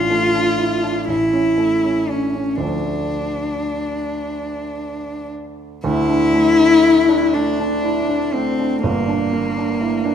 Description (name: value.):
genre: classical, romantic duo for cello and grand piano.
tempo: 37-42 BPM (dotted quarters).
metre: 6/8.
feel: rubato.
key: D minor.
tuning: A4 = 440 Hz.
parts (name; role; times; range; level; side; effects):
warm cello; melody; 0.0-10.1 s; Bb3 to F4; -17 LUFS; left 2 dB; none.
warm grand piano; accompaniment; 0.0-10.1 s; G1 to E4; -21 LUFS; right 3 dB; none.
room: wet recital hall reverb, RT60 1.8 s.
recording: minimal, uncompressed stereo recording.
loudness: -16 LUFS.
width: side -8 dB against mid.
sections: 0.0-5.8 A section; 5.8-10.1 A section.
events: none.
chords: 0.0 Dm/A; 1.1 A; 2.6 Dm; 5.8 D5; 8.8 Gm.